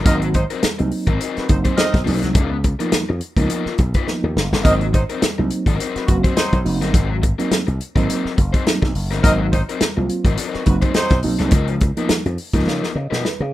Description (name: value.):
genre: funk.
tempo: 105 BPM.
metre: 4/4.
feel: swing 56% on 16ths.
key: Ab mixolydian.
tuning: A4 = 440 Hz.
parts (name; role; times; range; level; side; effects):
raw garage guitar; accompaniment; 0.0-13.5 s; F3 to C5; -26 LUFS; left 6 dB; overdrive, plate reverb.
slap bass with an envelope filter; bass; 0.0-13.5 s; Gb1 to Db3; -21 LUFS; equal; none.
warm horn section; second line; 0.1-11.2 s; Gb3 to Eb5; -22 LUFS; right 1 dB; plate reverb.
mellow reed electric piano; stabs; 0.1-13.5 s; F3 to Eb5; -23 LUFS; right 3 dB; fast tremolo.
warm soul drum kit; drums; 0.1-13.4 s; hi-hat, kick drum, snare drum; -18 LUFS; equal; none.
room: light reverb.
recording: rough home demo mix.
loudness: -16 LUFS.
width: side -15 dB against mid.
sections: 0.0-13.5 A section.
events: drum fill 4.1-4.6, 12.7-13.5.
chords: 0.0 Ab9; 2.4 Db13; 4.6 Ab9; 11.5 Db13.